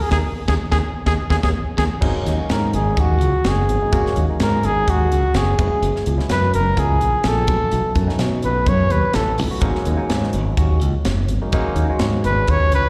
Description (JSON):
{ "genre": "electric jazz fusion", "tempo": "126 BPM", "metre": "4/4", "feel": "swing 55% on 16ths", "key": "G# minor", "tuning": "A4 = 440 Hz", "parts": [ { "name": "breathy trumpet", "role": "melody", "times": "0.0-9.4, 12.3-12.9 s", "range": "F#4 to C#5", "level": "-23 LUFS", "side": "equal", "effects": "slapback echo, tape echo" }, { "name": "barky tine electric piano", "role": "accompaniment", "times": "0.1-12.8 s", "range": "F#3 to F#4", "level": "-29 LUFS", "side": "equal", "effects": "overdrive, phaser, slapback echo" }, { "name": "modern bright fingered electric bass", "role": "bass", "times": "0.1-12.8 s", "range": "F#1 to B2", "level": "-22 LUFS", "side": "equal", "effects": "none" }, { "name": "crisp fusion drum kit", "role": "drums", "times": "0.1-12.8 s", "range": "crash cymbal, hi-hat, kick drum, snare drum", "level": "-25 LUFS", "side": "equal", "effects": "none" } ], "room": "light reverb", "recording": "live gig heard through the venue's PA, recital hall reverb", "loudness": "-19 LUFS", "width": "mono", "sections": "0.0-2.0 A section; 2.0-12.9 B section", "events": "drum fill 0.1-2.0; band accent 0.1-2.0; trumpet solo 2.0-12.9", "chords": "0.0 Eb7sus4; 2.0 G#9sus4; 5.6 F#9sus4; 7.5 B9sus4; 9.6 G#9sus4" }